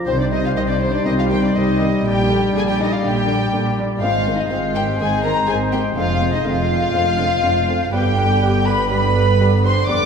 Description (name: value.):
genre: quick classical-period movement for symphony orchestra.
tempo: 122 BPM.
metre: 4/4.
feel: rubato.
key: C minor.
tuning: A4 = 441 Hz.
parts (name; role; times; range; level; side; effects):
small flute group; second line; 0.0-10.1 s; C5 to D6; -27 LUFS; left 2 dB; none.
warm oboe; second line; 0.0-10.0 s; B4 to D5; -29 LUFS; left 1 dB; none.
mellow bassoon; accompaniment; 0.0-10.0 s; G3 to Ab3; -27 LUFS; equal; none.
warm studio viola section; accompaniment; 0.0-10.1 s; D3 to D4; -26 LUFS; equal; none.
dark chamber violin section; melody; 0.1-10.1 s; C5 to D6; -23 LUFS; left 3 dB; none.
warm chamber violin section; second line; 0.1-10.1 s; C4 to D5; -24 LUFS; right 1 dB; none.
mellow French horn section; sustained chords; 0.1-10.1 s; G3 to Eb4; -24 LUFS; left 2 dB; none.
dark chamber cello section; bass; 0.1-10.1 s; F2 to C3; -24 LUFS; right 1 dB; none.
dark chamber double bass section; bass; 0.1-10.1 s; F1 to C2; -23 LUFS; right 2 dB; none.
room: wet scoring stage reverb, RT60 2.1 s.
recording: heard from further back in the room.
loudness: -15 LUFS.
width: side -6 dB against mid.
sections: 0.1-10.1 A section.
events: none.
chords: 0.1 Cm; 2.1 Gm/Bb; 4.0 Ab; 6.0 Dm7b5/F; 7.9 G.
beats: | 0.07 0.57 1.06 1.56 | 2.06 2.55 3.04 3.52 | 4.02 4.51 5.00 5.49 | 5.97 6.45 6.94 7.44 | 7.93 8.42 8.91 9.40 | 9.89.